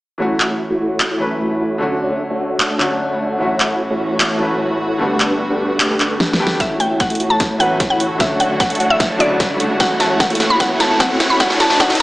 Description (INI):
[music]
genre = future bass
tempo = 150 BPM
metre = 4/4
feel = half-time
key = A mixolydian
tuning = A4 = 438 Hz
[part]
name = bright baby grand piano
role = accompaniment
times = 0.2-12.0 s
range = C#3 to B4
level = -23 LUFS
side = left 1 dB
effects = sidechain pumping, tape echo
[part]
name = supersaw chords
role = riff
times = 0.2-12.0 s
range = A3 to B5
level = -19 LUFS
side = equal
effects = phaser, sidechain pumping, low-pass filter
[part]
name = dubstep drum kit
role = drums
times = 0.4-12.0 s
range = finger snaps, handclaps, hi-hat, snare drum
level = -18 LUFS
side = equal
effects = high-pass filter on snare, studio reverb, high-pass filter on hats
[part]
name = rich chamber string section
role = sustained chords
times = 3.4-12.0 s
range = D2 to F#4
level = -27 LUFS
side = right 1 dB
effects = sidechain pumping
[part]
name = mallet-like synth pluck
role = melody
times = 6.6-12.0 s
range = D5 to B5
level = -17 LUFS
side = equal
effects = chorus, sidechain pumping
[part]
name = electronic kick drum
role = drums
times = 6.6-11.9 s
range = none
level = -21 LUFS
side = equal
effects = studio reverb
[part]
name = riser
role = sound effects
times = 8.1-12.0 s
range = none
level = -25 LUFS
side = equal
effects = none
[sound]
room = wet digital room reverb, RT60 1.1 s, digital ambience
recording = high-pass filter, small speaker sound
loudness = -14 LUFS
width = side -18 dB against mid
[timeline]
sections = 0.2-6.6 A section; 6.6-12.0 B section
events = drum fill 6.2-6.6, 6.6-12.0; build-up 6.6-12.0; filter sweep on supersaw synth 6.6-12.0; riser 8.1-12.0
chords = 0.2 A6; 1.8 Dmaj7; 3.4 A6; 5.0 Gmaj9; 6.6 A6; 8.2 Dmaj7; 9.8 A6; 11.4 Gmaj9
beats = | 0.20 0.60 1.00 1.40 | 1.80 2.20 2.60 3.00 | 3.40 3.80 4.20 4.60 | 5.00 5.40 5.80 6.20 | 6.60 7.00 7.40 7.80 | 8.20 8.60 9.00 9.40 | 9.80 10.20 10.60 11.00 | 11.40 11.80